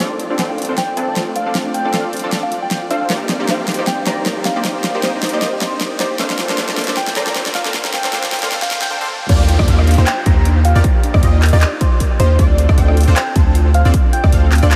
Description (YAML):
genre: future bass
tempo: 155 BPM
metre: 4/4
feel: swing 55% on 16ths, half-time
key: Eb lydian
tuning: A4 = 441 Hz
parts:
  - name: soft struck synth lead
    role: melody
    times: 0.0-14.3 s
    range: C5 to Bb5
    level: -26 LUFS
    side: equal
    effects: chorus, sidechain pumping, tape echo
  - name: clear symphonic string section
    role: sustained chords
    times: 0.0-8.9 s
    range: D3 to D5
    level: -32 LUFS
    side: equal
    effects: none
  - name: thumb-piano-like synth pluck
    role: arpeggios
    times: 0.0-14.8 s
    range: C4 to C5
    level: -31 LUFS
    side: equal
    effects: chorus, sidechain pumping, tape echo
  - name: supersaw stab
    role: riff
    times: 0.0-14.8 s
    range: Bb3 to A5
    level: -24 LUFS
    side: equal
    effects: analog chorus, sidechain pumping, low-pass filter, tape echo
  - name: pop drum kit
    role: drums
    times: 0.0-14.8 s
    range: crash cymbal, handclaps, hi-hat, rim click, snare drum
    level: -24 LUFS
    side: equal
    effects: none
  - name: riser and downlifter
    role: sound effects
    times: 7.1-12.4 s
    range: none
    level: -34 LUFS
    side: equal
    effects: none
  - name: unison pluck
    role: arpeggios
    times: 9.3-14.8 s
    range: C5 to G5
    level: -30 LUFS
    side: equal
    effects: ensemble chorus, sidechain pumping, tape echo
  - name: long sustained 808-style bass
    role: bass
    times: 9.3-14.7 s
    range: D2 to Eb2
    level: -14 LUFS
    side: equal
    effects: sidechain pumping
  - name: electronic kick drum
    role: drums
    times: 9.3-14.3 s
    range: none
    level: -17 LUFS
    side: equal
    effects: none
room: moderate huge ambient reverb, RT60 6.5 s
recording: dreamy mix soaked in reverb, high-pass filter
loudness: -16 LUFS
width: mono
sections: 0.0-9.3 A section; 9.3-14.8 B section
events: build-up 0.0-9.3; drum fill 0.0-8.9; filter sweep on supersaw synth 0.0-9.3; filter sweep on soft synth lead 0.0-9.3; filter sweep 0.0-9.3; break 8.9-9.3; drop 9.3-14.8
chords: 0.0 Dm7; 3.1 Cm9; 6.2 Bbmaj9/D; 9.3 Ebmaj9; 12.4 Dm7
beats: | 0.00 0.39 0.78 1.16 | 1.55 1.94 2.33 2.71 | 3.10 3.49 3.87 4.26 | 4.65 5.04 5.42 5.81 | 6.20 6.58 6.97 7.36 | 7.75 8.13 8.52 8.91 | 9.29 9.68 10.07 10.46 | 10.84 11.23 11.62 12.00 | 12.39 12.78 13.16 13.55 | 13.94 14.33 14.71